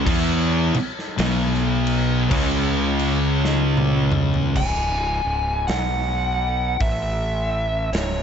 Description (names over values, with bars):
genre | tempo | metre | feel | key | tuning
stoner and doom metal | 53 BPM | 4/4 | swing 60% on 8ths | C# minor | A4 = 440 Hz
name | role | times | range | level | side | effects
thick fuzz guitar | riff | 0.0-4.5 s | B2 to E4 | -22 LUFS | left 7 dB | distortion
thick fuzz guitar | riff | 0.0-4.5 s | B2 to E4 | -22 LUFS | right 8 dB | distortion
fuzz fingered electric bass | bass | 0.0-8.2 s | C#1 to E2 | -25 LUFS | equal | overdrive
big rock drum kit | drums | 0.1-8.2 s | crash cymbal, hi-hat, kick drum, snare drum, toms | -26 LUFS | equal | none
fuzz lead guitar | melody | 4.6-8.2 s | C#5 to G#5 | -24 LUFS | equal | distortion, analog delay
room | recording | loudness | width
light reverb, studio reverb | nothing above 7.9 kHz | -19 LUFS | side -7 dB against mid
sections
0.0-4.6 A section; 4.6-8.2 B section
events
drum fill 3.4-4.6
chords
0.1 B5; 2.3 C#5; 5.7 B5; 6.8 A5